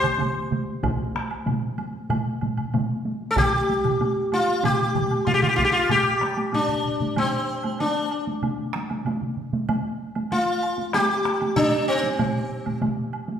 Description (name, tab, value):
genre	japanese traditional, taiko drum ensemble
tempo	95 BPM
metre	4/4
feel	straight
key	unclear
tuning	A4 = 440 Hz
part	sitar	melody	0.0-12.8 s	C4 to C5	-22 LUFS	left 1 dB	none
part	taiko ensemble	percussion	0.0-9.8 s	none	-30 LUFS	right 3 dB	none
part	woodblock	percussion	0.0-13.3 s	none	-36 LUFS	right 4 dB	none
part	taiko ensemble	percussion	0.2-13.4 s	none	-29 LUFS	right 1 dB	none
part	taiko ensemble	percussion	0.8-13.0 s	none	-28 LUFS	equal	none
part	taiko ensemble	percussion	0.8-5.7 s	none	-30 LUFS	equal	none
room	wet large studio reverb, RT60 1.3 s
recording	band playing live in one room, faint mains hum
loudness	-21 LUFS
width	side -8 dB against mid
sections	0.0-5.9 A section; 5.9-13.4 B section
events	none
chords	none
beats	0.20 | 0.84 1.47 2.11 2.74 | 3.37 4.01 4.64 5.27 | 5.90 6.54 7.17 7.80 | 8.43 9.06 9.69 10.31 | 10.94 11.57 12.20 12.82